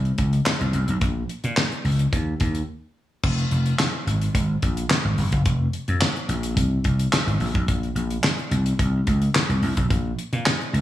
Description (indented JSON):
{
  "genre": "early-eighties boogie funk",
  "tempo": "108 BPM",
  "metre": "4/4",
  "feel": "straight",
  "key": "F minor",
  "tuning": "A4 = 440 Hz",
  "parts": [
    { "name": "vintage slap bass", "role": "bass", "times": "0.0-10.8 s", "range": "F1 to Bb2", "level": "-22 LUFS", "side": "equal", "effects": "none" },
    { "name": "damped 70s drum kit", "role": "drums", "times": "0.1-10.8 s", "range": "crash cymbal, handclaps, hi-hat, kick drum, snare drum", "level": "-23 LUFS", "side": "equal", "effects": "gated reverb" }
  ],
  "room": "little or no reverb",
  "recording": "small room ambience",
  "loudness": "-20 LUFS",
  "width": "side -13 dB against mid",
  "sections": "0.0-3.2 A section; 3.2-10.8 B section",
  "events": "break 2.7-3.2",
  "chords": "none",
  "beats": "0.46 | 1.02 1.57 2.13 2.68 | 3.24 3.79 4.35 4.91 | 5.46 6.02 6.57 7.13 | 7.68 8.24 8.79 9.35 | 9.90 10.46"
}